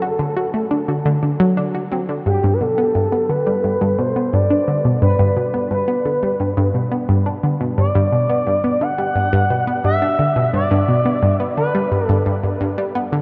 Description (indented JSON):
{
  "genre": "ambient",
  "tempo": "87 BPM",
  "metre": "4/4",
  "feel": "straight",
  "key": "G major",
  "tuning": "A4 = 442 Hz",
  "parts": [
    { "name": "expressive synth lead", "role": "melody", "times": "0.0-12.2 s", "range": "G4 to F#5", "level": "-22 LUFS", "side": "equal", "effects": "chorus, tape echo" },
    { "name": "analog pluck", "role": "riff", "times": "0.0-13.2 s", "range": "G2 to F#4", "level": "-20 LUFS", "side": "equal", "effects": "chorus, phaser, tape echo" }
  ],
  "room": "wet huge ambient reverb, RT60 7.9 s",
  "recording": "dark, warm production",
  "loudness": "-18 LUFS",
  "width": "mono",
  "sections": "0.0-2.3 A section; 2.3-13.2 B section",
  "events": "none",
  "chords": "0.0 D; 2.3 G",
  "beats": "0.19 0.88 1.57 | 2.26 2.95 3.64 4.33 | 5.02 5.71 6.40 7.09 | 7.78 8.47 9.16 9.85 | 10.54 11.23 11.92 12.61"
}